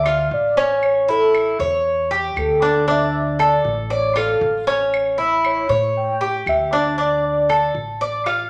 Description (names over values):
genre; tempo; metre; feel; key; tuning
latin, Cuban son and guajira; 117 BPM; 4/4; straight; D harmonic minor; A4 = 440 Hz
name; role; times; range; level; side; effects
warm velvety synth lead; melody; 0.0-7.7 s; A4 to G5; -22 LUFS; equal; chorus
Cuban tres; arpeggios; 0.0-8.5 s; C#4 to D5; -21 LUFS; equal; none
upright bass; bass; 0.0-8.5 s; A1 to A2; -31 LUFS; equal; none
claves; percussion; 0.1-8.5 s; none; -32 LUFS; equal; none
room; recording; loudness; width
wet large studio reverb, RT60 1.1 s; none; -19 LUFS; mono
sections
0.0-8.5 A section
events
soft synth lead solo 0.0-8.5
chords
0.0 Dm; 0.8 A7; 2.9 Dm; 4.9 A7; 7.0 Dm